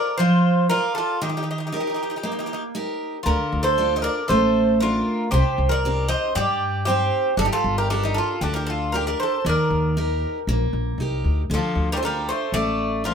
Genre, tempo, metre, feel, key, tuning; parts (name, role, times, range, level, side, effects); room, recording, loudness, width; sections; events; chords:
greek folk, Greek bouzouki band; 116 BPM; 4/4; straight; D phrygian; A4 = 443 Hz
Greek bouzouki; melody; 0.0-13.1 s; G4 to Eb5; -24 LUFS; right 2 dB
Greek bouzouki; second line; 0.0-13.1 s; F3 to C5; -26 LUFS; left 2 dB
picked steel-string acoustic guitar; accompaniment; 0.0-13.1 s; C3 to D5; -25 LUFS; equal
upright bass; bass; 3.3-13.1 s; G1 to G2; -24 LUFS; left 1 dB
wet studio reverb, RT60 0.6 s; minimal, uncompressed stereo recording; -20 LUFS; side -7 dB against mid
0.0-11.5 A section; 11.5-13.1 A section
0.0 Bb; 1.2 Eb; 3.3 Dm; 5.3 Cm; 7.4 Gm; 9.4 Eb; 11.5 Dm